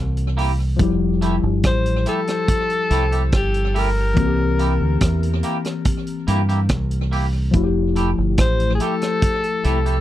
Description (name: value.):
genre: lovers rock reggae.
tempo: 71 BPM.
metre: 4/4.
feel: straight.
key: F major.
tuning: A4 = 439 Hz.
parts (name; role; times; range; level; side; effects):
tine electric piano; accompaniment; 0.0-10.0 s; E3 to G4; -24 LUFS; left 5 dB; lush chorus.
deep dub fingered electric bass; bass; 0.0-10.0 s; F1 to G2; -20 LUFS; right 1 dB; none.
vintage drum kit; drums; 0.2-10.0 s; hi-hat, kick drum, rim click; -22 LUFS; right 1 dB; tape echo.
twangy electric guitar; stabs; 0.4-10.0 s; A3 to G4; -24 LUFS; right 3 dB; wide subtle chorus.
clear alto saxophone; melody; 1.7-10.0 s; G4 to C5; -23 LUFS; left 2 dB; tape echo.
room: little or no reverb.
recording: dry, close 1970s-style studio recording.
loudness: -17 LUFS.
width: side -13 dB against mid.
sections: 0.0-10.0 A section.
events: none.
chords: 0.0 C7; 0.8 Fmaj9; 4.2 C7; 7.5 Fmaj9.